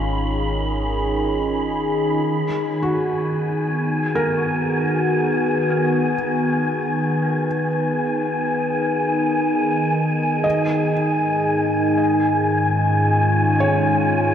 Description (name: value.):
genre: ambient.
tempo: free time.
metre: none.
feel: none.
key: G# dorian.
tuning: A4 = 440 Hz.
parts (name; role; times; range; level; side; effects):
evolving wavetable pad; sustained chords; 0.0-14.3 s; G#2 to G#4; -20 LUFS; equal; phaser, built-in reverb.
round analog bass; bass; 0.0-2.2 s; G#1; -27 LUFS; equal; none.
wind-like tuned noise texture; texture; 0.0-14.3 s; G#5 to B5; -24 LUFS; equal; built-in reverb, shimmer reverb.
felt-muted upright piano; arpeggios; 2.8-14.3 s; F#4 to D#5; -27 LUFS; right 1 dB; tape echo, shimmer reverb.
room: wet cathedral reverb, RT60 5.5 s.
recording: in a vast, echoing space.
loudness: -18 LUFS.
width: side -9 dB against mid.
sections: 0.0-2.2 A section; 2.2-14.3 B section.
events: none.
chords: 0.0 C#add9/G#; 2.2 G#m7; 10.4 C#add9/G#.